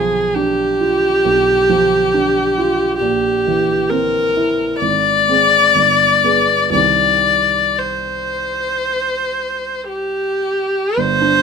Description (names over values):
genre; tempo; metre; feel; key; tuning
classical, romantic duo for viola and grand piano; 51-69 BPM; 4/4; rubato; C minor; A4 = 438 Hz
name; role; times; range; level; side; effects
rich viola; melody; 0.0-11.4 s; G4 to D5; -14 LUFS; left 2 dB; none
warm grand piano; accompaniment; 0.0-11.4 s; G1 to Ab4; -20 LUFS; right 5 dB; none
room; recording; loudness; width
light reverb; minimal, uncompressed stereo recording; -13 LUFS; side -6 dB against mid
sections
0.0-11.0 A section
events
none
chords
0.0 G7/B; 3.0 C7/Bb; 4.8 Ab; 5.8 G; 6.7 Cm